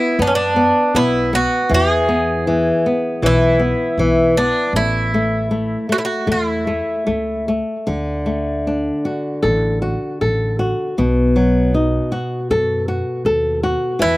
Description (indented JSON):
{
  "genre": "fado-style ballad",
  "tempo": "79 BPM",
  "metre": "4/4",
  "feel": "rubato",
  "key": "unclear",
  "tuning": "A4 = 440 Hz",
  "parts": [
    { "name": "Irish bouzouki", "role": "melody", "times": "0.0-7.5, 14.0-14.2 s", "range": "C#4 to G#4", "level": "-19 LUFS", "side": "right 1 dB", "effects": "none" },
    { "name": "flamenco guitar", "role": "accompaniment", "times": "0.0-14.2 s", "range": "B2 to A4", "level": "-17 LUFS", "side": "left 1 dB", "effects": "none" },
    { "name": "upright bass", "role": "bass", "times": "0.2-14.2 s", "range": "A1 to F#2", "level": "-22 LUFS", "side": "equal", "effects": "none" }
  ],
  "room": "little or no reverb",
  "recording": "recorded outdoors, with no room sound",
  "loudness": "-15 LUFS",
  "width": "side -18 dB against mid",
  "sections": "0.0-14.2 A section",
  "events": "none",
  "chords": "0.0 B5; 1.7 E; 4.7 A; 7.9 D; 11.0 B7",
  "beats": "0.19 0.95 | 1.72 2.48 3.24 3.98 | 4.74 5.51 6.28 7.08 | 7.88 8.66 9.44 10.21 | 10.98 11.74 12.49 13.25 | 14.00"
}